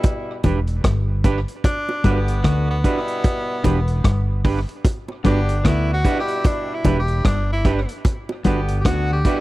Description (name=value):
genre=roots reggae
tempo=75 BPM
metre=4/4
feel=swing 59% on 16ths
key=G major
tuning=A4 = 440 Hz
part: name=warm horn section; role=second line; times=0.0-9.4 s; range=B2 to G4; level=-28 LUFS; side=left 1 dB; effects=dub echo
part: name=vintage drum kit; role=drums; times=0.0-9.4 s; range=hi-hat, kick drum, rim click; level=-19 LUFS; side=equal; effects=none
part: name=bongos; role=percussion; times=0.0-8.4 s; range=none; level=-30 LUFS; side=right 3 dB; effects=none
part: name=clean electric guitar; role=accompaniment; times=0.4-9.4 s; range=D4 to B4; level=-27 LUFS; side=right 5 dB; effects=dub echo
part: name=electric guitar at the edge of break-up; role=riff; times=0.4-9.1 s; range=E2 to D3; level=-25 LUFS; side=left 4 dB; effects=none
part: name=fingered electric bass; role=bass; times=0.4-9.2 s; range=E1 to D2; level=-20 LUFS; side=equal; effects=none
part: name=clear tenor saxophone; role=melody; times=1.6-9.4 s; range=Bb3 to G4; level=-26 LUFS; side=equal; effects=dub echo
room=small room ambience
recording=dry, close 1970s-style studio recording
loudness=-17 LUFS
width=side -18 dB against mid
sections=0.0-9.4 A section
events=tenor saxophone solo 0.0-9.4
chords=0.0 Em7; 1.6 Gmaj7; 3.2 Em7; 4.8 Gmaj7; 6.4 Em7; 8.0 Gmaj7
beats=0.04 0.84 | 1.64 2.44 3.24 4.04 | 4.84 5.64 6.45 7.25 | 8.05 8.85